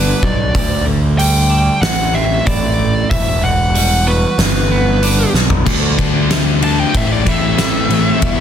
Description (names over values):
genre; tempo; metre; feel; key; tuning
quiet-loud alternative rock; 94 BPM; 4/4; straight; unclear; A4 = 440 Hz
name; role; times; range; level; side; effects
fuzz lead guitar; melody; 0.0-8.4 s; B4 to A5; -19 LUFS; equal; distortion, digital delay
electric guitar at the edge of break-up; arpeggios; 0.0-8.4 s; G2 to F#4; -20 LUFS; right 5 dB; phaser, digital delay
fuzz picked electric bass; bass; 0.0-8.4 s; E1 to D2; -17 LUFS; equal; overdrive
oversized low-tuned drum kit; drums; 0.2-8.4 s; crash cymbal, hi-hat, kick drum, ride cymbal, snare drum, toms; -17 LUFS; equal; none
thick fuzz guitar; riff; 5.7-8.4 s; E2 to D4; -18 LUFS; left 12 dB; distortion
room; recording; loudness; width
light reverb; dense, heavily limited modern master; -12 LUFS; side -9 dB against mid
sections
0.0-5.7 A section; 5.7-8.4 B section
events
half time 0.0-5.7; drum fill 5.4-5.7; lead electric guitar solo 5.7-8.4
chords
0.0 Gmaj7; 0.6 Dsus4; 1.8 Am; 3.1 Emadd9; 4.4 Gmaj7; 5.7 Dsus4; 7.0 Am